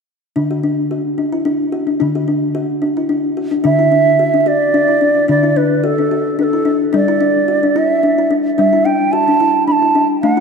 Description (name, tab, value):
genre	world meditative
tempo	109 BPM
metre	3/4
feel	swing 53% on 16ths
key	D major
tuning	A4 = 440 Hz
part	kalimba	arpeggios	0.4-10.4 s	D3 to F#4	-15 LUFS	left 3 dB	none
part	hollow bansuri	melody	3.6-10.4 s	A4 to B5	-14 LUFS	right 4 dB	diffuse ambient delay
room	wet church reverb, RT60 3.5 s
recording	none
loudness	-12 LUFS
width	side -5 dB against mid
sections	0.4-3.7 A section; 3.7-10.4 B section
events	none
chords	0.4 D; 6.9 G5